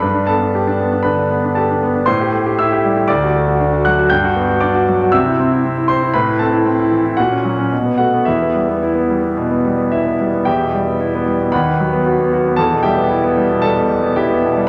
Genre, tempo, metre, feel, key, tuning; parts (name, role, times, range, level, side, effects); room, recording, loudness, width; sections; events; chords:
classical, virtuoso piano study; 107-120 BPM; 4/4; rubato; E minor; A4 = 440 Hz
clear concert grand piano; solo; 0.0-14.7 s; D2 to G6; -16 LUFS; equal
wet recital hall reverb, RT60 1.9 s; -16 LUFS; mono
0.0-10.5 A section; 10.5-14.7 A section
0.0 G; 2.1 Am7; 3.1 D; 4.1 Gmaj7; 5.1 C; 6.2 Am; 7.2 F#/A#; 7.7 B5; 8.3 Em; 11.5 B/D#; 12.6 Em